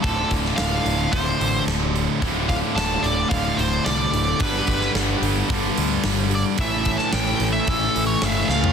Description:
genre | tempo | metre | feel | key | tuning
quiet-loud alternative rock | 110 BPM | 4/4 | straight | D dorian | A4 = 440 Hz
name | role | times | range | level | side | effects
nasal lead guitar with a parked wah | melody | 0.0-8.7 s | A4 to A5 | -25 LUFS | equal | overdrive, analog delay
biting overdriven guitar | riff | 0.0-8.7 s | D2 to A4 | -26 LUFS | left 13 dB | none
tight distorted guitar | riff | 0.0-8.7 s | D2 to A3 | -25 LUFS | right 12 dB | distortion
growling picked electric bass | bass | 0.0-8.7 s | D1 to D2 | -26 LUFS | equal | overdrive
big rock drum kit | drums | 0.0-8.7 s | hi-hat, kick drum, snare drum, toms | -26 LUFS | equal | soft clipping on kick
room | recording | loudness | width
light reverb, studio ambience | dense, heavily limited modern master | -19 LUFS | side -7 dB against mid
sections
0.0-8.7 A section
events
lead electric guitar solo 0.0-8.7; drum fill 8.5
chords
0.0 Dm7; 4.4 G; 6.6 A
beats
| 0.04 0.59 1.13 1.68 | 2.23 2.77 3.32 3.86 | 4.41 4.95 5.50 6.04 | 6.59 7.13 7.68 8.22

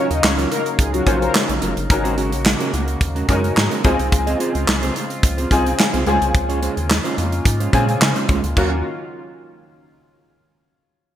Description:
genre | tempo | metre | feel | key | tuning
early-eighties boogie funk | 108 BPM | 4/4 | straight | Eb dorian | A4 = 440 Hz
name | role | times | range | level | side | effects
mellow synth brass | second line | 0.0-1.3 s | Gb3 to Eb5 | -24 LUFS | left 3 dB | chorus, digital delay
clear grand piano | accompaniment | 0.0-8.8 s | Bb3 to C5 | -23 LUFS | left 3 dB | ensemble chorus
chorused pulse-width pad | sustained chords | 0.0-8.8 s | Db3 to F5 | -27 LUFS | left 1 dB | lush chorus
mellow electric guitar | riff | 0.0-8.7 s | Gb3 to Eb5 | -25 LUFS | right 4 dB | lush chorus
rubbery square bass | bass | 0.1-8.8 s | Gb1 to Db3 | -22 LUFS | equal | none
modern studio drum kit | drums | 0.1-8.7 s | crash cymbal, handclaps, hi-hat, kick drum, snare drum | -19 LUFS | equal | gated reverb
room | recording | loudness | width
light reverb, small room reverb | bright 1980s-style digital production | -16 LUFS | side -11 dB against mid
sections
0.0-8.6 A section; 8.6-10.8 B section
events
none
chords
0.0 Ebm9; 1.9 Ab9sus4; 3.8 Dbmaj7; 6.1 Bbm9; 8.6 Ebm9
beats
0.23 0.79 1.34 | 1.90 2.46 3.01 3.57 | 4.12 4.68 5.23 5.79 | 6.34 6.90 7.46 8.01 | 8.57

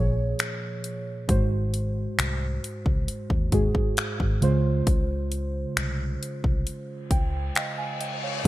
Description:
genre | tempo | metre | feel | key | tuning
contemporary R&B | 67 BPM | 4/4 | straight | unclear | A4 = 442 Hz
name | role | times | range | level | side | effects
muted felt-like synth keys | accompaniment | 0.0-8.5 s | Ab2 to Ab5 | -28 LUFS | right 1 dB | chorus
vintage muted fingered electric bass | bass | 0.0-8.5 s | Ab1 to Eb2 | -28 LUFS | equal | none
pop drum kit | drums | 0.4-8.5 s | finger snaps, hi-hat, kick drum | -26 LUFS | equal | gated reverb
reverse cymbal and impact | sound effects | 7.2-8.5 s | none | -34 LUFS | left 5 dB | none
room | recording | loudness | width
little or no reverb | bright 1980s-style digital production | -24 LUFS | side -16 dB against mid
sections
0.0-8.5 A section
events
synth keys fill 6.7-8.5; reverse cymbal 7.2-8.5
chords
0.0 Bbm7; 1.3 Ab7; 4.4 Dbmaj7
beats
0.39 | 1.29 2.18 3.08 3.98 | 4.87 5.77 6.66 7.56 | 8.45

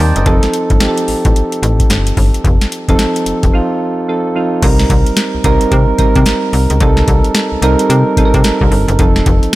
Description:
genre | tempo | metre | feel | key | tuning
R&B, new jack swing | 110 BPM | 4/4 | swing 62% on 16ths | C dorian | A4 = 440 Hz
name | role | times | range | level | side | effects
soft electric-piano-like synth keys | accompaniment | 0.0-9.6 s | F3 to A5 | -14 LUFS | right 2 dB | chorus
slap-like FM bass | bass | 0.0-9.4 s | F1 to C3 | -14 LUFS | equal | none
booming analog drum machine | drums | 0.2-9.6 s | crash cymbal, hi-hat, kick drum, snare drum | -13 LUFS | equal | none
room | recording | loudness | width
little or no reverb | none | -10 LUFS | side -17 dB against mid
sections
0.0-4.6 A section; 4.6-9.6 B section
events
break 3.5-4.6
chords
0.3 F7; 4.6 Cm7; 9.0 F7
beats
| 0.26 0.81 1.35 1.90 | 2.44 2.99 3.54 4.08 | 4.63 5.17 5.72 6.26 | 6.81 7.35 7.90 8.45 | 8.99 9.54

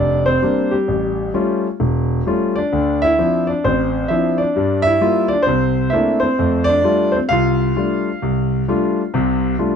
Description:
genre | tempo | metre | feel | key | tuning
solo jazz | 131 BPM | 4/4 | swing 66% on 8ths | F major | A4 = 436 Hz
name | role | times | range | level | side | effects
warm concert grand piano | solo | 0.0-9.8 s | E1 to F5 | -15 LUFS | equal | none
room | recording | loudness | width
light reverb | dark, warm production | -15 LUFS | side -7 dB against mid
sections
0.0-9.8 A section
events
none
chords
0.0 Bb69; 0.9 A7b13; 2.7 Dm9; 4.6 Gm7; 5.5 C13; 6.4 F69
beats
0.42 | 0.88 1.34 1.80 2.26 | 2.72 3.18 3.64 4.10 | 4.56 5.02 5.47 5.93 | 6.39 6.85 7.31 7.77 | 8.23 8.68 9.14 9.60

